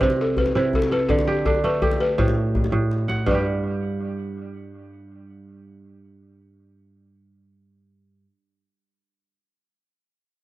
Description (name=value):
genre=west african traditional, West African string and xylophone music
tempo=111 BPM (dotted quarters)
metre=12/8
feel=straight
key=G major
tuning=A4 = 442 Hz
part: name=balafon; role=melody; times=0.0-8.2 s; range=G4 to C5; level=-24 LUFS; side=left 2 dB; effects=none
part: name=kora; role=arpeggios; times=0.0-8.3 s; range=G2 to F#5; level=-23 LUFS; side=right 2 dB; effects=tape echo
part: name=djembe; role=percussion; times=0.0-3.4 s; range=none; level=-25 LUFS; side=left 1 dB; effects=none
room=light reverb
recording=dry, close 1970s-style studio recording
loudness=-19 LUFS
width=side -16 dB against mid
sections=0.0-3.3 A section; 3.3-7.6 B section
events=drum fill 2.7-3.3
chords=0.0 C; 1.1 D5; 2.2 Am; 3.3 G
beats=0.01 0.55 | 1.09 1.64 2.18 2.72 | 3.26 3.81 4.35 4.89 | 5.43 5.98 6.52 7.07